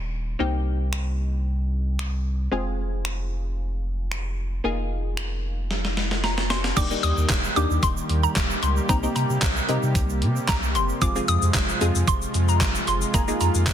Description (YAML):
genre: dance-pop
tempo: 113 BPM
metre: 4/4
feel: straight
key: Eb major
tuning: A4 = 440 Hz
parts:
  - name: punchy chord stab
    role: accompaniment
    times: 0.0-13.7 s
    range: Ab3 to Ab4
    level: -30 LUFS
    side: left 2 dB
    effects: chorus, sidechain pumping
  - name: warm sub bass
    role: bass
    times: 0.0-13.7 s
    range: Eb1 to C3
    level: -25 LUFS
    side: equal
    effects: sidechain pumping
  - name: gated 80s digital drum machine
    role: drums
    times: 0.9-13.7 s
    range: crash cymbal, finger snaps, handclaps, hi-hat, kick drum, shaker, snare drum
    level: -25 LUFS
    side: equal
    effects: gated reverb, gated reverb snare, soft clipping on snare
  - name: hollow square pluck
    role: melody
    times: 6.2-13.7 s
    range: Bb5 to Eb6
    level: -27 LUFS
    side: equal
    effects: chorus, tape echo
  - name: soft supersaw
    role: sustained chords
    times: 6.8-13.7 s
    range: C3 to G4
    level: -29 LUFS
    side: equal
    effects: sidechain pumping
  - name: egg shaker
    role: percussion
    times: 6.8-13.7 s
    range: none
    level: -38 LUFS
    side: right 16 dB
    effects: none
room: light reverb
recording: dense, heavily limited modern master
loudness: -21 LUFS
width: side -10 dB against mid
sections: 0.0-6.8 A section; 6.8-13.7 B section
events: drum fill 5.7-6.8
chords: 0.4 Cm7; 2.5 Fm; 4.6 Bb7sus4/F; 6.8 Ebmaj7; 8.9 Cm7; 11.0 Fm; 13.1 Bb7sus4/F